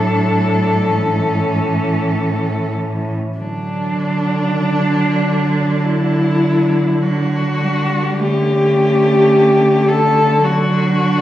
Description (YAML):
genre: classical, lyrical piece for cello ensemble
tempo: 47-54 BPM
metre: 4/4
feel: rubato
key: D major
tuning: A4 = 440 Hz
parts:
  - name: warm cello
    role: melody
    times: 0.0-11.2 s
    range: D4 to A4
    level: -17 LUFS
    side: left 2 dB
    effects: none
  - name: rich cello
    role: second line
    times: 0.0-11.2 s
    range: C#4 to D4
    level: -24 LUFS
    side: right 5 dB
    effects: none
  - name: rich cello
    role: accompaniment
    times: 0.0-11.2 s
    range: E3 to A3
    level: -20 LUFS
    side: right 1 dB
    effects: none
  - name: rich cello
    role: bass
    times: 0.0-11.2 s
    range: A2 to D3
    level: -19 LUFS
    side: right 1 dB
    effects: none
room: wet recital hall reverb, RT60 1.7 s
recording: heard from further back in the room, nothing above 10.9 kHz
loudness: -13 LUFS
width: side -12 dB against mid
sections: 0.0-11.2 A section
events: none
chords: 0.0 D/A; 0.9 A; 3.4 D; 8.2 A7/D; 10.5 D